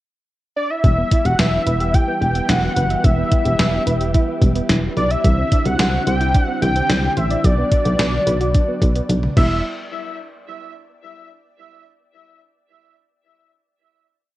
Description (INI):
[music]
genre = synth-pop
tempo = 109 BPM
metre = 4/4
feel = straight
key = E minor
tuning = A4 = 439 Hz
[part]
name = wide unison lead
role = melody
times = 0.6-9.6 s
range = D5 to G5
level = -22 LUFS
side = equal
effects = ping-pong delay
[part]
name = ensemble organ-string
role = sustained chords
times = 0.8-9.4 s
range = D3 to G4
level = -27 LUFS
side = equal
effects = ensemble chorus
[part]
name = soft round pluck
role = arpeggios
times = 0.8-9.6 s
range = E3 to E5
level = -28 LUFS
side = right 2 dB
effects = chorus, ping-pong delay
[part]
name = solid FM bass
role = bass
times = 0.8-9.6 s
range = E1 to C2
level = -19 LUFS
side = equal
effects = none
[part]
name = gated 80s digital drum machine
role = drums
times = 0.8-9.5 s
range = crash cymbal, hi-hat, kick drum, snare drum, toms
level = -18 LUFS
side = equal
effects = gated reverb, gated reverb snare
[sound]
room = light reverb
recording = worn, warbling old tape, cassette tape, warbly pitch drift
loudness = -15 LUFS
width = side -16 dB against mid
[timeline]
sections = 0.0-0.8 pickup bar; 0.8-9.6 verse; 9.6-11.8 final hit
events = drum fill 9.1-9.6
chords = 0.0 N.C.; 0.8 Em; 5.2 Cadd9; 7.4 Bm; 9.4 Em; 9.6 N.C.